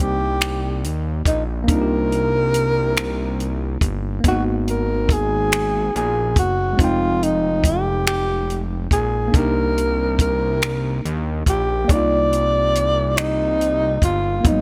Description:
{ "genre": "slow six-eight R&B", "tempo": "47 BPM (dotted quarters)", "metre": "6/8", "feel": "straight", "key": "C minor", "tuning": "A4 = 440 Hz", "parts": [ { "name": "breathy tenor saxophone", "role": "melody", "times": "0.0-14.6 s", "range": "Eb4 to D5", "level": "-23 LUFS", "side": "equal", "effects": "none" }, { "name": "tine electric piano", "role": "accompaniment", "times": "0.0-14.6 s", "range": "Gb3 to G5", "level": "-28 LUFS", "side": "equal", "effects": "overdrive" }, { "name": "fat analog bass", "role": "bass", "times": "0.0-14.6 s", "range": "F1 to Eb2", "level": "-25 LUFS", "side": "equal", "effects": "none" }, { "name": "compact cocktail drum kit", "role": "drums", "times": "0.4-14.6 s", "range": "finger snaps, hi-hat, kick drum", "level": "-21 LUFS", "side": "equal", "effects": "none" } ], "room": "little or no reverb", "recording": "none", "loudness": "-20 LUFS", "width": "mono", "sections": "0.0-14.6 A section", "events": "none", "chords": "0.0 Cm9; 4.2 Abm9; 6.8 Fm9; 9.3 Cm9", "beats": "0.41 | 1.69 2.96 | 4.24 5.52 | 6.79 8.07 | 9.35 10.62 | 11.90 13.18 | 14.45" }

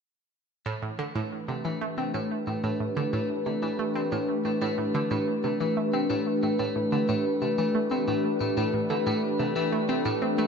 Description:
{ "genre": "ambient, sequencer-driven space music", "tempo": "91 BPM", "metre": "4/4", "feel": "straight", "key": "A minor", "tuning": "A4 = 436 Hz", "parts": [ { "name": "sweeping resonant pad", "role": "sustained chords", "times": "0.7-10.5 s", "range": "E3 to B4", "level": "-27 LUFS", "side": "left 1 dB", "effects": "wide subtle chorus" }, { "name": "electric guitar at the edge of break-up", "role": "arpeggios", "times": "0.7-10.5 s", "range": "A3", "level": "-37 LUFS", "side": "left 3 dB", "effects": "auto-pan, analog delay" }, { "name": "analog pluck", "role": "riff", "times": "0.7-10.5 s", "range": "A2 to C4", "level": "-30 LUFS", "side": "right 2 dB", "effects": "chorus, analog delay" } ], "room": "wet plate reverb, RT60 2.5 s", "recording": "dreamy mix soaked in reverb", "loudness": "-25 LUFS", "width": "side -6 dB against mid", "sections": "0.7-10.5 A section", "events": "fade-in on clean electric guitar 0.7-10.5", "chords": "0.7 Am7", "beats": "| 0.66 1.32 1.98 2.64 | 3.30 3.96 4.62 5.27 | 5.93 6.59 7.25 7.91 | 8.57 9.23 9.89" }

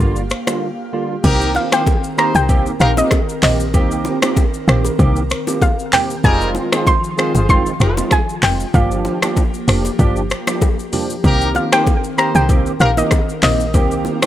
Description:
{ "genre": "afrobeats", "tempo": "96 BPM", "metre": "4/4", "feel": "swing 55% on 16ths", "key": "C minor", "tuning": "A4 = 444 Hz", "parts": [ { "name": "barky tine electric piano", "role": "accompaniment", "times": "0.0-14.3 s", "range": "D3 to G4", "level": "-21 LUFS", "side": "right 4 dB", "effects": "ensemble chorus" }, { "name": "airy breathy pad", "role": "sustained chords", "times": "0.0-14.3 s", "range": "Eb3 to F5", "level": "-26 LUFS", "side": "equal", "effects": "chorus" }, { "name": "woody log drum bass", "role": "bass", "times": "0.0-14.1 s", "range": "F1 to C2", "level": "-17 LUFS", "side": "equal", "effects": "none" }, { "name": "congas and bongos", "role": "percussion", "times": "0.0-14.3 s", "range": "none", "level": "-26 LUFS", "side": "left 2 dB", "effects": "none" }, { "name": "afro-pop drum kit", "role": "drums", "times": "0.2-14.3 s", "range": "crash cymbal, finger snaps, handclaps, hi-hat, kick drum, rim click, shaker", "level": "-17 LUFS", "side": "equal", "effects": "vintage 12-bit sampler grit" }, { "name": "warm horn section", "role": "second line", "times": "1.2-12.9 s", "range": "G3 to C5", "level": "-23 LUFS", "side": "left 2 dB", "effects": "tape echo" }, { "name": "soft round pluck", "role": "melody", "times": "1.6-14.3 s", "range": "Eb5 to C6", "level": "-19 LUFS", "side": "equal", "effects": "chorus, tape echo" } ], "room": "little or no reverb", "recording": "none", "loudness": "-13 LUFS", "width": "side -12 dB against mid", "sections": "0.0-1.2 A section; 1.2-14.3 B section", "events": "break 0.6-1.2", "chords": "0.0 Gm7; 1.2 Cm7; 6.2 Fm7; 8.7 Gm7; 11.2 Cm7", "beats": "0.61 | 1.24 1.86 2.49 3.12 | 3.74 4.37 4.99 5.62 | 6.24 6.87 7.49 8.12 | 8.74 9.37 9.99 10.62 | 11.24 11.87 12.49 13.12 | 13.74" }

